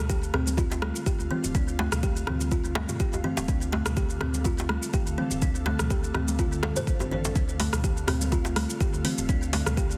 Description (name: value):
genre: afro house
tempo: 124 BPM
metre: 4/4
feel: swing 55% on 16ths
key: D minor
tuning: A4 = 439 Hz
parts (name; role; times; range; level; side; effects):
- ethereal airy pad; sustained chords; 0.1-10.0 s; D3 to F5; -38 LUFS; equal; ensemble chorus, built-in reverb, phaser, sidechain pumping
- round analog bass; bass; 0.0-10.0 s; D1 to D2; -33 LUFS; equal; tube saturation, sidechain pumping
- kalimba; arpeggios; 0.1-9.9 s; A3 to C5; -34 LUFS; equal; sidechain pumping, digital delay
- deep house drum kit; drums; 0.1-10.0 s; hi-hat, rim click, shaker, toms; -35 LUFS; equal; small room ambience
- electronic kick drum; drums; 0.1-9.9 s; none; -29 LUFS; equal; small room ambience
- congas; percussion; 0.1-9.9 s; none; -40 LUFS; equal; none
- djembe; percussion; 0.3-9.6 s; none; -37 LUFS; equal; none
room: light reverb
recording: heavily compressed radio sound, multiband compression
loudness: -27 LUFS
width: mono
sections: 0.0-10.0 A section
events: none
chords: 0.0 Dm7